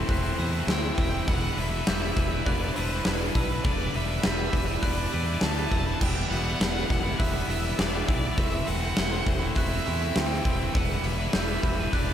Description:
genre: post-rock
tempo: 101 BPM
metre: 4/4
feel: straight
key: E minor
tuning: A4 = 441 Hz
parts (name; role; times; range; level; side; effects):
- rich studio string section; sustained chords; 0.0-12.1 s; G4 to C6; -42 LUFS; left 1 dB; none
- electric guitar through a small old amp; arpeggios; 0.0-12.1 s; E2 to E4; -37 LUFS; left 1 dB; slapback echo
- glockenspiel with hard plastic mallets; arpeggios; 0.0-12.1 s; E6 to G7; -41 LUFS; right 2 dB; slapback echo
- distorted electric guitar; riff; 0.0-12.1 s; E3 to B4; -34 LUFS; left 8 dB; overdrive, slapback echo
- tight distorted guitar; riff; 0.0-12.1 s; E3 to B4; -35 LUFS; right 8 dB; distortion, slapback echo
- modern bright fingered electric bass; bass; 0.0-12.1 s; E1 to E2; -30 LUFS; equal; none
- huge arena drum kit; drums; 0.1-12.1 s; crash cymbal, hi-hat, kick drum, snare drum; -27 LUFS; equal; none
- clear violin; melody; 0.7-12.1 s; B4 to A5; -34 LUFS; right 2 dB; slapback echo
room: light reverb, small room ambience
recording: none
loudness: -24 LUFS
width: side -10 dB against mid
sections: 0.0-12.1 A section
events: none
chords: 0.0 Am/E; 1.3 Em7; 8.4 Am/E; 10.7 G/E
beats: 0.09 0.68 | 1.27 1.86 2.45 3.05 | 3.64 4.23 4.82 5.41 | 6.01 6.60 7.19 7.78 | 8.38 8.97 9.56 10.15 | 10.74 11.34 11.93

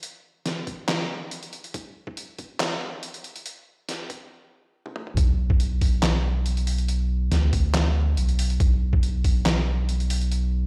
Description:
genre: deep dubstep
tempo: 140 BPM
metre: 4/4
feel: half-time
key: B minor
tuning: A4 = 439 Hz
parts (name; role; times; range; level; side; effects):
- trip hop sampler-style drum kit; drums; 0.0-10.4 s; handclaps, hi-hat, snare drum, toms; -31 LUFS; equal; studio reverb
- electronic kick drum; drums; 0.7-9.3 s; none; -24 LUFS; equal; studio reverb
- soft dub sub bass; bass; 5.2-10.7 s; B1 to D2; -25 LUFS; equal; none
room: light reverb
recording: played on a big sound system in a bare room, stone room reverb, high-pass filter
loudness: -24 LUFS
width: mono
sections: 0.0-5.2 A section; 5.2-10.7 B section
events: build-up 0.0-5.2; drum fill 4.8-5.2; drop 5.2-10.7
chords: none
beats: | 0.03 0.46 0.89 1.31 | 1.74 2.17 2.60 3.03 | 3.46 3.89 4.32 4.74 | 5.17 5.60 6.03 6.46 | 6.89 7.32 7.74 8.17 | 8.60 9.03 9.46 9.89 | 10.31

